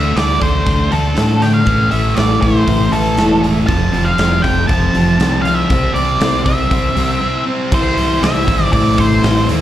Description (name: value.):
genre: classic rock.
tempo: 119 BPM.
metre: 4/4.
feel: straight.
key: unclear.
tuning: A4 = 437 Hz.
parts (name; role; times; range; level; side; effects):
octave-fuzz lead guitar; melody; 0.0-9.5 s; A4 to A5; -18 LUFS; equal; distortion, slapback echo.
overdriven electric guitar; riff; 0.0-9.6 s; F2 to E4; -16 LUFS; equal; none.
growling fingered electric bass; bass; 0.0-9.6 s; E1 to A2; -18 LUFS; equal; overdrive.
big rock drum kit; drums; 0.2-9.6 s; crash cymbal, hi-hat, kick drum, snare drum; -18 LUFS; equal; none.
room: small room reverb.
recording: live gig heard through the venue's PA, club reverb.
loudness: -12 LUFS.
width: side -12 dB against mid.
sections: 0.0-7.7 A section; 7.7-9.6 B section.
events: break 7.2-7.7.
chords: 0.0 D5; 1.7 Am; 3.7 F; 5.7 Cadd9; 7.7 C; 8.7 Am.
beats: 0.17 0.67 1.17 | 1.67 2.18 2.68 3.18 | 3.69 4.19 4.69 5.20 | 5.70 6.21 6.71 7.22 | 7.72 8.23 8.73 9.24.